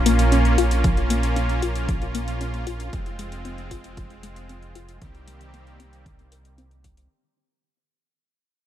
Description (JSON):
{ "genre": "synthwave", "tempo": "115 BPM", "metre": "4/4", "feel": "straight", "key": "unclear", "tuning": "A4 = 440 Hz", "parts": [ { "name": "soft supersaw", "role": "sustained chords", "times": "0.0-7.1 s", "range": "Eb3 to G4", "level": "-28 LUFS", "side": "right 1 dB", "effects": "sidechain pumping" }, { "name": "chorused synth bass", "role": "bass", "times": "0.0-7.1 s", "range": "F1 to C2", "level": "-23 LUFS", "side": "equal", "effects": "sidechain pumping" }, { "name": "soft round pluck", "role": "arpeggios", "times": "0.1-6.9 s", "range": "Eb3 to Bb4", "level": "-27 LUFS", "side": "left 4 dB", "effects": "chorus, ping-pong delay" }, { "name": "electronic hi-hat", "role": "drums", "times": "0.1-7.1 s", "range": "none", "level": "-33 LUFS", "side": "left 2 dB", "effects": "none" }, { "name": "electronic kick drum", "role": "drums", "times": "0.8-6.9 s", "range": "none", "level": "-25 LUFS", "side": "equal", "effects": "none" } ], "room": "light reverb, digital ambience", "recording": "none", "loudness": "-19 LUFS", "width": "side -11 dB against mid", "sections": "0.0-7.1 A section", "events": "fade-out 0.0-7.1; filter sweep on synth arpeggio sound 0.0-7.1", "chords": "0.0 Bbm; 2.9 Fm; 5.0 Cm7", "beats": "0.32 | 0.84 1.36 1.89 2.41 | 2.93 3.45 3.97 4.49 | 5.02 5.54 6.06 6.58" }